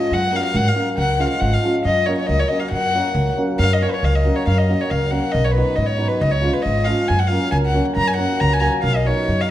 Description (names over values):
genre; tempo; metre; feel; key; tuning
balkan folk, Balkan wedding band; 138 BPM; 2/4; swing 54% on 16ths; F# major; A4 = 444 Hz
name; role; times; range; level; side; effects
dark violin; melody; 0.0-9.5 s; B4 to A#5; -21 LUFS; left 2 dB; none
hammered dulcimer; accompaniment; 0.0-9.5 s; E#3 to F#4; -22 LUFS; equal; none
upright bass; bass; 0.1-9.5 s; G#1 to G#2; -20 LUFS; equal; none
room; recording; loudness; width
moderate recital hall reverb, RT60 1.5 s; dark, warm production; -16 LUFS; side -12 dB against mid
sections
0.0-3.6 A section; 3.6-9.5 B section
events
none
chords
0.1 F#; 1.0 C#; 1.9 F#; 5.3 B; 6.2 C#; 7.1 F#; 8.8 B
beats
| 0.11 0.55 | 0.98 1.42 | 1.85 2.29 | 2.73 3.16 | 3.60 4.03 | 4.47 4.91 | 5.34 5.78 | 6.21 6.65 | 7.09 7.53 | 7.96 8.40 | 8.84 9.28